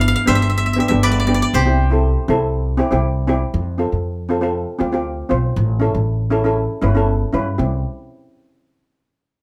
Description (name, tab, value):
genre	calypso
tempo	119 BPM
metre	4/4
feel	straight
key	C major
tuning	A4 = 440 Hz
part	koto	melody	0.0-3.6 s	G4 to F5	-23 LUFS	equal	none
part	steel pan	accompaniment	0.0-7.8 s	B3 to C5	-22 LUFS	equal	none
part	upright bass	bass	0.0-7.8 s	G1 to G2	-21 LUFS	equal	none
room	moderate studio ambience, RT60 0.5 s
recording	none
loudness	-18 LUFS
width	mono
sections	0.0-3.5 A section; 3.5-7.6 B section; 7.6-9.4 C section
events	none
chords	0.0 G; 1.5 C; 3.5 F; 5.6 A; 7.6 C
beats	0.01 0.52 1.02 | 1.53 2.03 2.54 3.04 | 3.55 4.05 4.56 5.06 | 5.57 6.07 6.58 7.08 | 7.58